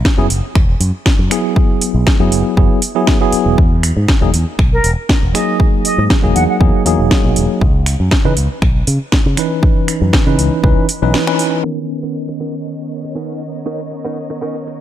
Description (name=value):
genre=nu-disco, nu disco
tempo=119 BPM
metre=4/4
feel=straight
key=unclear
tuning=A4 = 438 Hz
part: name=electronic kick drum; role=drums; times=0.1-10.7 s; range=none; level=-13 LUFS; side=equal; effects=none
part: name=house drum kit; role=drums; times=0.1-14.8 s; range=crash cymbal, finger snaps, hi-hat, shaker, snare drum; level=-20 LUFS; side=equal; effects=low-pass filter on snare, low-pass filter on hats, low-pass filter on cymbals, low-pass filter on perc
part: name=tine electric piano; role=accompaniment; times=0.2-14.8 s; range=D#3 to B4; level=-18 LUFS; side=equal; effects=medium stereo tremolo, sidechain pumping, low-pass filter, dub echo
part: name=fingered electric bass with an envelope filter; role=bass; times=0.2-11.1 s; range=E1 to C#3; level=-15 LUFS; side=equal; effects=none
part: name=silver concert flute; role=melody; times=4.7-6.6 s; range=A#4 to F#5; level=-20 LUFS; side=right 1 dB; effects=ping-pong delay
part: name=rich studio string section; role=sustained chords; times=11.6-14.8 s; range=B3 to D#5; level=-30 LUFS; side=left 2 dB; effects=sidechain pumping
part: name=direct-recorded clean electric guitar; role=riff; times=11.6-14.7 s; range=B3 to A#4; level=-26 LUFS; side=right 3 dB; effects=wide subtle chorus, low-pass filter
room=digital ambience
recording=low-pass filter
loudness=-12 LUFS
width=side -12 dB against mid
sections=0.0-11.6 A section; 11.6-14.8 B section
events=kick drops out 11.1-11.6; band accent 11.1; filter sweep on clean electric guitar 11.6-14.8; filter sweep on tine electric piano 11.6-14.8; filter sweep 11.6-14.8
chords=0.0 F#9sus4; 3.6 Emaj9#11; 7.6 C#m9; 11.6 Bmaj9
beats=0.05 0.55 1.06 | 1.56 2.07 2.57 3.08 | 3.58 4.08 4.59 5.09 | 5.60 6.10 6.60 7.11 | 7.61 8.12 8.62 9.12 | 9.63 10.13 10.64 11.14 | 11.65 12.15 12.65 13.16 | 13.66 14.17 14.67